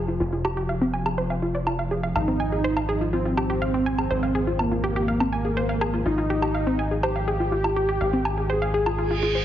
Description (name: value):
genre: melodic techno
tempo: 123 BPM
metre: 4/4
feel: straight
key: unclear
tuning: A4 = 439 Hz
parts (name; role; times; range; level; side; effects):
- warbly dusty pluck; arpeggios; 0.0-9.4 s; C4 to Ab5; -27 LUFS; equal; chorus, dub echo
- gritty driven synth bass; bass; 0.0-9.4 s; F1 to Ab1; -28 LUFS; equal; distortion
- analog drone; drone; 0.0-9.4 s; F2 to F3; -34 LUFS; equal; chorus
- woodblock; drums; 0.4-9.0 s; none; -30 LUFS; right 1 dB; none
- wide unison lead; melody; 2.2-9.4 s; Bb3 to Ab4; -26 LUFS; equal; wide subtle chorus, tape echo
- reverse cymbal; sound effects; 9.1-9.4 s; none; -28 LUFS; right 6 dB; none
room: moderate recital hall reverb, RT60 1.8 s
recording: heavily compressed radio sound, multiband compression, nothing above 7.5 kHz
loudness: -22 LUFS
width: side -11 dB against mid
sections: 0.0-9.4 A section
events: filter sweep on synth arpeggio sound 0.0-9.4; reverse cymbal 9.1-9.4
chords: 0.0 N.C.; 2.2 Ab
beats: | 0.20 0.69 1.18 1.67 | 2.15 2.64 3.13 3.62 | 4.11 4.59 5.08 5.57 | 6.06 6.54 7.03 7.52 | 8.01 8.50 8.98